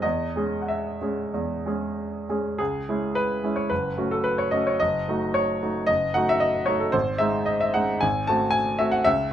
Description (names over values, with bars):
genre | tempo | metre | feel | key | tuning
classical, romantic character piece for solo piano | 89-117 BPM | 4/4 | rubato | C# minor | A4 = 440 Hz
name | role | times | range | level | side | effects
clear baby grand piano | solo | 0.0-9.3 s | F#1 to A5 | -22 LUFS | equal | none
room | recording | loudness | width
light reverb | none | -22 LUFS | side -10 dB against mid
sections
0.0-2.6 A section; 2.6-9.3 A section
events
none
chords
0.0 C#m/E; 2.6 C#m; 3.7 F#m; 4.8 D#dim/F#; 6.9 G#5; 8.0 G#7b9